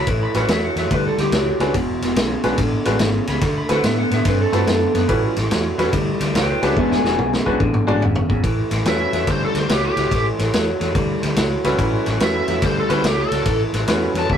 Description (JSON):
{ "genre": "electric blues shuffle", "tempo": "143 BPM", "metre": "4/4", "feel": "swing 66% on 8ths", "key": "A mixolydian", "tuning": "A4 = 440 Hz", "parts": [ { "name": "electric slide guitar", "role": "second line", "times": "0.0-7.3 s", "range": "G4 to B5", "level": "-23 LUFS", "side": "equal", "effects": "none" }, { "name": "electric guitar through a small old amp", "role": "riff", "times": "0.0-14.4 s", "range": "E2 to C4", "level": "-22 LUFS", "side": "equal", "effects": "none" }, { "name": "vintage muted fingered electric bass", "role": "bass", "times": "0.1-14.4 s", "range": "E1 to A2", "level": "-24 LUFS", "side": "equal", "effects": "none" }, { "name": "vintage drum kit", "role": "drums", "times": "0.1-14.4 s", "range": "kick drum, ride cymbal, snare drum, toms", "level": "-22 LUFS", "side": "equal", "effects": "none" }, { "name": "bright upright piano", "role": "accompaniment", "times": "0.3-14.4 s", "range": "G3 to D5", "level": "-22 LUFS", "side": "left 1 dB", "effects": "none" }, { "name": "biting lead guitar", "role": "melody", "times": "8.9-14.4 s", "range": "G4 to A5", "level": "-22 LUFS", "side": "equal", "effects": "overdrive" } ], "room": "light reverb", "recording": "rough rehearsal-room recording", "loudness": "-16 LUFS", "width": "side -8 dB against mid", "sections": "0.0-8.4 A section; 8.4-14.4 A section", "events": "electric slide guitar solo 0.0-8.4; drum fill 6.8-8.4; lead electric guitar solo 8.4-14.4", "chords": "0.0 A13; 1.7 E13; 3.4 D13; 5.1 A13; 6.8 E13; 8.4 A13" }